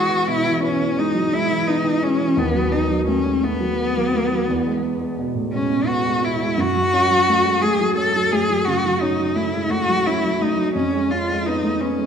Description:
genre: classical, romantic duo for cello and grand piano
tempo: 57 BPM (dotted quarters)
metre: 12/8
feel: rubato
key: E major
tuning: A4 = 441 Hz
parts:
  - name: rich cello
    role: melody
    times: 0.0-12.1 s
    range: B3 to A4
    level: -19 LUFS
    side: left 1 dB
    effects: none
  - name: dark baby grand piano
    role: accompaniment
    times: 0.0-12.1 s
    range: D#2 to C#4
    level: -21 LUFS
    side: right 1 dB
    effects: none
room: wet scoring stage reverb, RT60 1.7 s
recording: minimal, uncompressed stereo recording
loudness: -17 LUFS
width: side -7 dB against mid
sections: 0.0-12.1 A section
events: none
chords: 0.0 E; 2.4 B7/D#; 4.5 E; 6.6 F#m; 10.8 C#7/E#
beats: 0.26 1.32 | 2.37 3.42 4.47 5.52 | 6.58 7.62 8.67 9.71 | 10.76 11.81

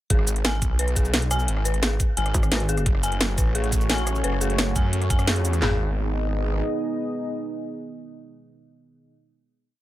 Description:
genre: dark technical drum and bass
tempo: 174 BPM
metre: 4/4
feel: straight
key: G# phrygian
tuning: A4 = 440 Hz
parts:
  - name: dark detuned synth bell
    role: arpeggios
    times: 0.1-5.8 s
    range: G#4 to G#5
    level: -30 LUFS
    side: left 2 dB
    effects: chorus, sidechain pumping, dub echo
  - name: snarling distorted saw bass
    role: bass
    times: 0.1-6.6 s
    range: F#1 to F#2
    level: -24 LUFS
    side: equal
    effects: distortion, overdrive
  - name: drum and bass drum kit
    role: drums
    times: 0.1-5.7 s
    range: handclaps, kick drum, snare drum, toms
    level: -23 LUFS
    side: equal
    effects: none
  - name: drum and bass drum kit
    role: drums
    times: 0.1-5.6 s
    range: cabasa, hi-hat, rim click, snare drum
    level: -26 LUFS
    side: equal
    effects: none
  - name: metallic wobble bass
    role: bass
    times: 2.3-2.8 s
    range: G#1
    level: -24 LUFS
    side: equal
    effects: chorus
  - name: dark analog pad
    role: sustained chords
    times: 3.2-9.1 s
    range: A3 to D#5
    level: -29 LUFS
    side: right 1 dB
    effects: chorus, sidechain pumping
room: little or no reverb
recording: none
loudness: -21 LUFS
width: side -14 dB against mid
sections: 0.1-5.6 drop; 5.6-8.4 final chord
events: drop 0.1-5.6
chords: 0.1 G#m; 2.9 F#m; 5.6 G#m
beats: | 0.10 0.45 0.79 1.14 | 1.48 1.83 2.17 2.52 | 2.86 3.21 3.55 3.90 | 4.24 4.58 4.93 5.27 | 5.62 5.96 6.31 6.65 | 7.00 7.34 7.69 8.03

